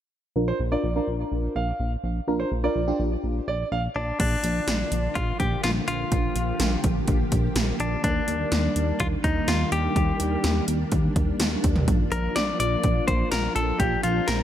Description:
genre	synth-pop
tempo	125 BPM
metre	4/4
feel	straight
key	Bb major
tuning	A4 = 441 Hz
part	FM electric piano with soft pad layer	accompaniment	0.4-3.4 s	D4 to Bb4	-28 LUFS	equal	chorus, phaser, low-pass filter
part	chorused synth bass	bass	0.4-14.4 s	Bb1 to Eb2	-27 LUFS	equal	none
part	clear concert grand piano	second line	0.5-4.0 s	C5 to F5	-31 LUFS	right 3 dB	digital delay
part	direct-recorded clean electric guitar	melody	4.0-14.4 s	D4 to D5	-27 LUFS	left 3 dB	digital delay
part	soft string machine	sustained chords	4.2-14.4 s	D3 to G4	-29 LUFS	equal	ensemble chorus
part	80s electronic pad drums	drums	4.2-14.4 s	crash cymbal, hi-hat, kick drum, snare drum, toms	-26 LUFS	equal	gated reverb on snare and toms
room	light reverb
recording	none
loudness	-22 LUFS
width	side -11 dB against mid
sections	0.4-4.2 A section; 4.2-14.4 B section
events	filter sweep on FM electric piano 0.4-4.2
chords	0.4 Bb; 8.0 Ebmaj7; 11.9 Bb

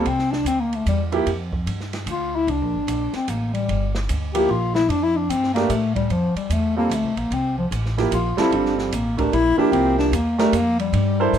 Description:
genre	modal jazz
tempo	149 BPM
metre	3/4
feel	swing 65% on 8ths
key	C mixolydian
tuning	A4 = 440 Hz
part	mellow bass clarinet	second line	0.0-11.4 s	F3 to G4	-21 LUFS	left 3 dB	none
part	warm concert grand piano	accompaniment	0.0-1.3, 4.3-11.4 s	F3 to C5	-21 LUFS	right 5 dB	none
part	upright bass	bass	0.1-11.4 s	G1 to A2	-25 LUFS	equal	none
part	open jazz drum kit	drums	0.1-11.4 s	hi-hat, kick drum, ride cymbal, snare drum	-32 LUFS	right 2 dB	none
room	light reverb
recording	minimal, uncompressed stereo recording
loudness	-19 LUFS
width	side -9 dB against mid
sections	0.0-11.4 A section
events	bass clarinet solo 0.0-11.4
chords	0.0 C13sus4

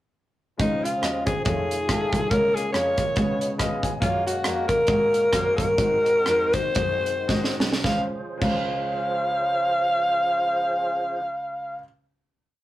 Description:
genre	uptempo gospel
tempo	104-140 BPM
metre	4/4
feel	swing 57% on 8ths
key	Db major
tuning	A4 = 440 Hz
part	raspy alto saxophone	melody	0.6-11.8 s	Eb4 to F5	-23 LUFS	equal	none
part	clear grand piano	accompaniment	0.6-11.8 s	Db2 to Ab5	-32 LUFS	left 2 dB	none
part	tonewheel organ	sustained chords	0.6-11.2 s	Eb3 to C5	-35 LUFS	right 3 dB	slow rotary speaker, overdrive, chorus vibrato
part	warm French horn section	sustained chords	0.6-11.2 s	Db3 to F5	-36 LUFS	right 2 dB	none
part	rich cello	bass	0.6-11.8 s	C2 to Ab2	-30 LUFS	equal	none
part	tight funk drum kit	drums	0.6-8.6 s	crash cymbal, hi-hat, kick drum, rim click, snare drum	-27 LUFS	right 1 dB	none
room	moderate studio ambience, RT60 0.5 s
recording	rough rehearsal-room recording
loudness	-21 LUFS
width	side -15 dB against mid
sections	0.6-7.8 breakdown; 7.8-12.4 final chord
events	grand piano fill 3.4-4.0; slowing down 4.0-7.8; drum fill 7.3-7.8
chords	0.6 Dbmaj7; 1.4 F7alt; 2.3 Bbm7/Db; 3.2 Db7; 4.0 Gbmaj7; 5.8 Ab7; 7.8 Dbmaj7

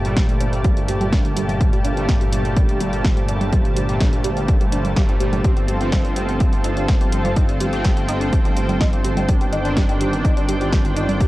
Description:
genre	melodic techno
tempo	125 BPM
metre	4/4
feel	straight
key	G minor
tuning	A4 = 436 Hz
part	lush unison pad	sustained chords	0.0-11.3 s	Eb3 to A5	-28 LUFS	equal	chorus, sidechain pumping
part	tight sequenced synth	arpeggios	0.0-11.3 s	G3 to G4	-28 LUFS	equal	chorus, phaser, sidechain pumping, analog delay
part	analog synth brass	stabs	0.0-11.3 s	Bb2 to D4	-26 LUFS	right 1 dB	chorus, cassette tape, sidechain pumping, analog delay
part	swelling detuned saw bass	bass	0.0-11.3 s	G1	-24 LUFS	equal	sidechain pumping
part	punchy analog drum machine	drums	0.0-11.3 s	congas, hi-hat, snare drum	-27 LUFS	right 1 dB	none
part	granular cloud pad	texture	0.0-11.3 s	F4 to A5	-30 LUFS	equal	built-in reverb, sidechain pumping
part	electronic kick drum	drums	0.2-11.3 s	none	-18 LUFS	equal	overdrive
room	little or no reverb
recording	dry, gritty hardware recording, cassette tape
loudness	-16 LUFS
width	side -17 dB against mid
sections	0.0-11.3 A section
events	filter sweep on synth arpeggio sound 0.0-11.3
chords	0.0 Gmadd9; 5.4 F/G; 9.3 Cmadd9/G

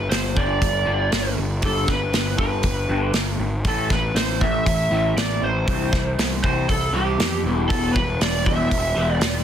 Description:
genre	quiet-loud alternative rock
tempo	118 BPM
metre	4/4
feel	straight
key	unclear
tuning	A4 = 436 Hz
part	lead guitar through a small cranked amp	melody	0.0-9.4 s	G4 to E5	-24 LUFS	right 1 dB	overdrive
part	electric guitar through a small old amp	arpeggios	0.0-9.4 s	G2 to B3	-27 LUFS	left 2 dB	phaser
part	fuzz picked electric bass	bass	0.0-9.4 s	E1 to F2	-24 LUFS	equal	overdrive
part	loose indie drum kit	drums	0.1-9.3 s	hi-hat, kick drum, snare drum	-23 LUFS	equal	none
room	light reverb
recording	dense, heavily limited modern master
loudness	-19 LUFS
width	side -9 dB against mid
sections	0.0-9.4 A section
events	none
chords	0.0 G; 3.6 A5; 5.7 C; 7.4 Em

